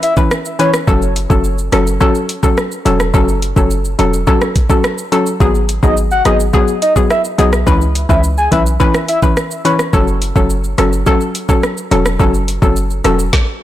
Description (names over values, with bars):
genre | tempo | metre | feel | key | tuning
dancehall | 106 BPM | 4/4 | straight | unclear | A4 = 440 Hz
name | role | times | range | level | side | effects
soft octave-layered synth lead | melody | 0.0-0.7, 5.8-9.8 s | C#5 to G#5 | -17 LUFS | equal | chorus, digital delay
island pop drum kit | drums | 0.0-13.5 s | hi-hat, kick drum, rim click, shaker, snare drum | -15 LUFS | right 1 dB | soft clipping on snare
hollow square pluck | accompaniment | 0.2-13.2 s | E3 to B4 | -15 LUFS | left 2 dB | chorus
short 808-style bass | bass | 0.9-13.3 s | E1 to C#2 | -16 LUFS | equal | none
room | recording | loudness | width
light reverb, digital ambience | blown-out, overdriven recording, overdrive | -11 LUFS | side -13 dB against mid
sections
0.0-13.6 A section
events
none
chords
0.0 C#m7; 0.9 F#m; 5.4 G#m7; 7.7 C#m7; 9.9 F#m